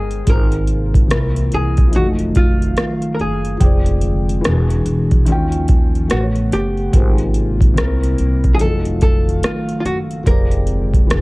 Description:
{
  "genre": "lo-fi hip hop",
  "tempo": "72 BPM",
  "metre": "4/4",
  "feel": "swing 62% on 16ths",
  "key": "unclear",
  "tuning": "A4 = 441 Hz",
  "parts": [
    { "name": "archtop guitar, miked and amplified", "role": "melody", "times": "0.0-11.2 s", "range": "F4 to Bb4", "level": "-24 LUFS", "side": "equal", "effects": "low-pass filter" },
    { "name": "felt-muted upright piano", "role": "accompaniment", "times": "0.0-11.2 s", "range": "C3 to G5", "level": "-23 LUFS", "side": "left 2 dB", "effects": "cassette tape, low-pass filter" },
    { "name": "upright bass", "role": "bass", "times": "0.0-11.2 s", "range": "E1 to Eb2", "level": "-19 LUFS", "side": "equal", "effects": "none" },
    { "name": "booming analog drum machine", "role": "drums", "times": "0.1-11.2 s", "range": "hi-hat, kick drum, rim click", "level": "-15 LUFS", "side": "equal", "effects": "overdrive" },
    { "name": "dark analog pad", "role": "sustained chords", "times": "0.3-11.2 s", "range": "C3 to G5", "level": "-25 LUFS", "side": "equal", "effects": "chorus, low-pass filter" }
  ],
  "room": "little or no reverb",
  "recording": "cassette tape",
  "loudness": "-13 LUFS",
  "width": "side -22 dB against mid",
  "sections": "0.3-11.2 A section",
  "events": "felt piano fill 0.0",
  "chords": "0.3 Ab69; 1.1 C7; 1.9 F7b9; 3.6 Fm69; 4.4 E9; 5.3 Eb9; 6.1 A69; 6.9 Ab69; 7.8 C7; 8.6 F7b9; 10.3 Bb13/F"
}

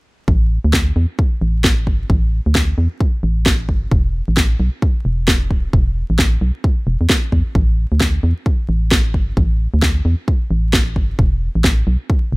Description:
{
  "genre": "UK garage, two-step garage",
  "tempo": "132 BPM",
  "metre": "4/4",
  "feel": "swing 61% on 16ths",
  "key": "unclear",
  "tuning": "A4 = 441 Hz",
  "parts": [
    { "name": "organ-like FM bass", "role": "bass", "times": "0.3-12.4 s", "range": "D1 to E2", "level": "-16 LUFS", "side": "equal", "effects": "none" },
    { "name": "electronic kick drum", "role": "drums", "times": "0.3-12.2 s", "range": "none", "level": "-16 LUFS", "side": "equal", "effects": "studio ambience" },
    { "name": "electronic snare drum", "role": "drums", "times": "0.7-11.8 s", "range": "none", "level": "-17 LUFS", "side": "equal", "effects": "studio ambience" }
  ],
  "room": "little or no reverb",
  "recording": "vinyl crackle",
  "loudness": "-14 LUFS",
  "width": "side -24 dB against mid",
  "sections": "0.3-12.4 A section",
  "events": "none",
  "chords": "none"
}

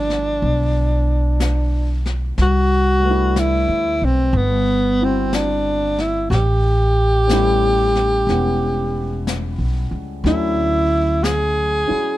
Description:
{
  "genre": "jazz ballad",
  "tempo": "61 BPM",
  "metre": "4/4",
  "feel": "swing 68% on 8ths",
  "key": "A major",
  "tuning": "A4 = 445 Hz",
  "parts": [
    { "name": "breathy alto saxophone", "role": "melody", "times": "0.0-12.2 s", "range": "B3 to G#4", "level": "-19 LUFS", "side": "equal", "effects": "none" },
    { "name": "warm grand piano", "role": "accompaniment", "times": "0.0-12.2 s", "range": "D3 to F#5", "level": "-26 LUFS", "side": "left 1 dB", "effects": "none" },
    { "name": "upright bass", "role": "bass", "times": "0.0-11.9 s", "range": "E1 to D2", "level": "-19 LUFS", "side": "equal", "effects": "none" },
    { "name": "jazz brush drum kit", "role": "drums", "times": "0.1-12.2 s", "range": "brushed snare drum, hi-hat, snare drum", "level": "-29 LUFS", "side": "left 4 dB", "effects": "none" }
  ],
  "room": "little or no reverb",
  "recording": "close, detailed microphones",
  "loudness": "-16 LUFS",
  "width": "side -15 dB against mid",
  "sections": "0.0-12.2 A section",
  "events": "none",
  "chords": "0.0 G13; 2.4 Cmaj13; 6.3 A9; 10.2 Dmaj7"
}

